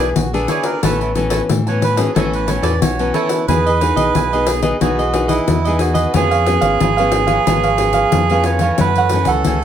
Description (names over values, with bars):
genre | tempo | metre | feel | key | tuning
samba and choro | 90 BPM | 4/4 | straight | A major, E major from 3.5 s | A4 = 437 Hz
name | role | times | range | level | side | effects
melodica | second line | 0.0-9.6 s | E4 to D5 | -19 LUFS | right 7 dB | none
cavaquinho | accompaniment | 0.0-9.6 s | E4 to A5 | -21 LUFS | right 4 dB | none
nylon-string guitar | accompaniment | 0.0-9.6 s | F#2 to G#4 | -20 LUFS | left 4 dB | none
deep dub fingered electric bass | bass | 0.0-9.6 s | G#1 to A2 | -20 LUFS | equal | none
pandeiro | percussion | 0.2-9.6 s | none | -20 LUFS | left 5 dB | none
room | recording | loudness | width
moderate studio reverb, RT60 0.5 s | none | -13 LUFS | side -9 dB against mid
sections
0.0-3.5 A section; 3.5-9.6 B section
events
melodica solo 0.0-3.5, 3.5-9.6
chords
0.0 E7; 0.8 Aadd9; 3.5 Emaj7; 6.2 C#7; 8.8 F#m7